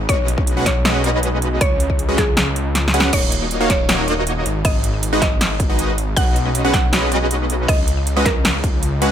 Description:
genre	future bass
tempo	158 BPM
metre	4/4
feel	half-time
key	Eb minor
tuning	A4 = 440 Hz
part	wide detuned saw bass	bass	0.0-9.1 s	Eb1 to Db2	-21 LUFS	equal	chorus, sidechain pumping
part	mallet-like synth pluck	melody	0.1-8.6 s	Ab4 to F#5	-24 LUFS	equal	chorus, sidechain pumping, ping-pong delay
part	supersaw stab	riff	0.1-9.1 s	G#3 to F#5	-20 LUFS	equal	sidechain pumping, tape echo
part	big-room dance drum kit	drums	0.1-9.1 s	crash cymbal, hi-hat, rim click, snare drum	-21 LUFS	right 1 dB	none
part	electronic kick drum	drums	0.1-8.7 s	none	-19 LUFS	equal	none
room	light reverb, digital ambience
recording	none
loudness	-15 LUFS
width	side -9 dB against mid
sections	0.0-3.1 A section; 3.1-9.1 A section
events	drop 0.0-3.1, 3.1-9.1; drum fill 2.8-3.1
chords	0.1 B69; 1.6 Db9sus4; 3.1 Ebm7; 4.5 Abm7; 6.2 B69; 7.7 Db9sus4

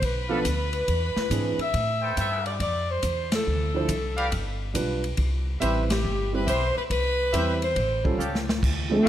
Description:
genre	jazz, big band swing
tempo	139 BPM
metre	4/4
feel	swing 67% on 8ths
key	C major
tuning	A4 = 440 Hz
part	warm saxophone section	melody	0.0-8.2 s	G4 to E5	-27 LUFS	left 1 dB	none
part	upright bass	bass	0.0-9.1 s	G1 to A2	-28 LUFS	equal	none
part	swinging big-band drum kit	drums	0.0-9.1 s	crash cymbal, hi-hat, kick drum, ride cymbal, snare drum	-31 LUFS	equal	none
part	warm concert grand piano	accompaniment	0.3-9.0 s	E3 to C5	-30 LUFS	right 4 dB	none
part	clear trumpet section	stabs	0.3-8.4 s	G4 to G5	-31 LUFS	equal	none
part	breathy trombone	melody	8.9-9.1 s	A3	-19 LUFS	equal	none
part	clear saxophone section	sustained chords	9.0-9.1 s	D3 to F4	-26 LUFS	left 2 dB	none
room	light reverb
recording	none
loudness	-23 LUFS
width	side -11 dB against mid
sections	0.0-8.6 A section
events	band accent 3.2, 5.8; drum fill 8.2-8.6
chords	0.0 Bm7b5; 0.9 E7b13; 1.7 Am9; 3.5 Dm9; 4.3 G7; 5.2 Cmaj7; 7.8 A7alt

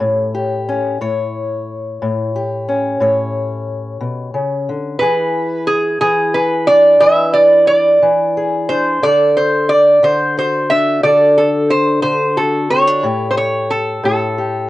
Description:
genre	acoustic country blues, solo or duo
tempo	60 BPM (dotted quarters)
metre	12/8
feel	straight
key	A mixolydian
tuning	A4 = 440 Hz
part	fingerpicked old ladder-braced acoustic guitar	accompaniment	0.0-14.7 s	A2 to C#5	-18 LUFS	left 2 dB	cassette tape
part	lap resonator guitar	melody	5.0-14.7 s	G#4 to E5	-12 LUFS	right 1 dB	cassette tape
room	wet booth ambience, RT60 0.2 s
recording	home recording on cassette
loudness	-12 LUFS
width	side -16 dB against mid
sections	0.0-14.7 A section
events	none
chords	0.0 A7; 5.0 E7; 9.0 D7; 13.0 A7

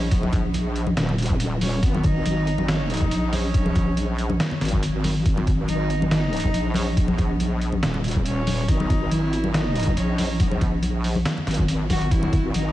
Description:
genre	deep dubstep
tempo	140 BPM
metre	4/4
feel	swing 54% on 16ths, half-time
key	G# minor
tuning	A4 = 440 Hz
part	warm cello	melody	0.0-12.7 s	B3 to F#4	-30 LUFS	equal	dub echo
part	wobble bass	bass	0.0-12.7 s	D#1 to A#1	-23 LUFS	equal	chorus
part	electronic kick drum	drums	0.1-12.4 s	none	-23 LUFS	equal	small room reverb
part	trip hop sampler-style drum kit	drums	0.1-12.6 s	hi-hat, snare drum	-30 LUFS	equal	small room reverb
part	congas	percussion	0.2-12.6 s	none	-29 LUFS	left 2 dB	none
room	light reverb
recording	vinyl crackle, nothing above 10.4 kHz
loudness	-20 LUFS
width	side -14 dB against mid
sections	0.0-12.7 A section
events	none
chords	0.0 G#5

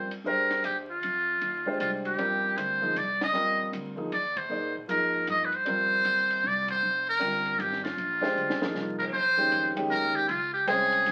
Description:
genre	modal jazz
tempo	155 BPM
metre	3/4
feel	swing 64% on 8ths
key	F dorian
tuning	A4 = 441 Hz
part	trumpet with metal mute	melody	0.0-11.1 s	E4 to Eb5	-28 LUFS	equal	none
part	dark grand piano	accompaniment	0.0-11.1 s	Eb3 to G5	-35 LUFS	equal	none
part	upright bass	bass	0.0-11.1 s	F1 to Bb2	-44 LUFS	equal	none
part	compact cocktail drum kit	drums	0.1-11.1 s	crash cymbal, hi-hat, kick drum, ride cymbal, snare drum	-42 LUFS	equal	none
room	moderate studio ambience, RT60 0.4 s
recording	very old 78 rpm record, vinyl crackle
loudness	-27 LUFS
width	mono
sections	0.0-9.1 A section; 9.1-11.1 B section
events	band accent 4.3, 6.6; drum fill 8.4-8.8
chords	0.0 F9sus4; 9.1 Bbm11

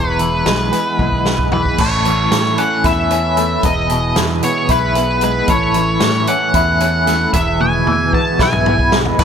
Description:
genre	psychedelic rock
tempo	227 BPM (eighths)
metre	7/8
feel	straight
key	A major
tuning	A4 = 440 Hz
part	octave-fuzz lead guitar	melody	0.0-9.2 s	B4 to A5	-18 LUFS	equal	distortion, dub echo
part	overdriven combo organ	sustained chords	0.0-9.2 s	E3 to A4	-24 LUFS	right 5 dB	wide subtle chorus
part	electric guitar with an envelope filter	riff	0.0-9.2 s	E2 to E4	-18 LUFS	left 1 dB	tremolo, double-tracked left and right
part	fingered electric bass	bass	0.0-9.2 s	E1 to A2	-20 LUFS	equal	none
part	vintage drum kit	drums	0.2-9.2 s	crash cymbal, hi-hat, kick drum, snare drum, toms	-20 LUFS	equal	none
room	light reverb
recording	echo-heavy mix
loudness	-13 LUFS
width	side -7 dB against mid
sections	0.0-1.8 A section; 1.8-9.2 B section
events	drum fill 1.0-1.8, 7.6-9.2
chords	0.0 E; 1.8 A; 3.6 E; 5.5 A; 7.3 E

